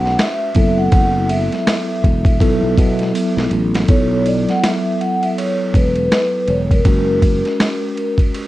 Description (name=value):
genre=hip hop, jazz-hop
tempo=81 BPM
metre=4/4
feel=swing 61% on 16ths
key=unclear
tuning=A4 = 443 Hz
part: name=vibraphone with soft mallets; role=melody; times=0.0-8.2 s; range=A#4 to F#5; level=-20 LUFS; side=equal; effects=none
part: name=mellow tine electric piano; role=accompaniment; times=0.0-8.5 s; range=F#3 to B4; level=-20 LUFS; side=equal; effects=medium stereo tremolo
part: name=sustaining fretless electric bass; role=bass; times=0.0-7.4 s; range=E1 to B2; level=-19 LUFS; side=equal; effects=none
part: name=dusty soul sampler-style drum kit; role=drums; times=0.1-8.5 s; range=hi-hat, kick drum, ride cymbal, snare drum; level=-17 LUFS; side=equal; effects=overdrive, vintage 12-bit sampler grit
room=light reverb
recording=dark, warm production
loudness=-13 LUFS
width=side -16 dB against mid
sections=0.0-3.9 A section; 3.9-8.5 B section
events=drum fill 3.1-3.9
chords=0.0 C#m7; 0.6 F#m7; 2.4 B5; 6.8 F#add9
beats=0.18 | 0.92 1.67 2.41 3.15 | 3.89 4.63 5.37 6.11 | 6.85 7.59 8.33